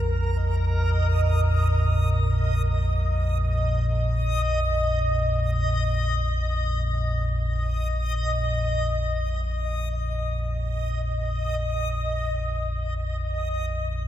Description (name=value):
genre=ambient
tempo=free time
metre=none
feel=none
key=unclear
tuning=A4 = 439 Hz
part: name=deep rumbling drone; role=drone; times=0.0-14.1 s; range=Bb1 to F2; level=-24 LUFS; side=equal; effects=built-in reverb
part: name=backwards swelling texture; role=texture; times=0.0-14.1 s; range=Bb4 to Eb5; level=-29 LUFS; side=equal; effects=built-in reverb
room=wet cathedral reverb, RT60 7.0 s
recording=in a vast, echoing space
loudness=-22 LUFS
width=side -11 dB against mid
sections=0.0-14.1 A section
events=filter sweep on synth drone 0.0-14.1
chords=0.2 Bbsus4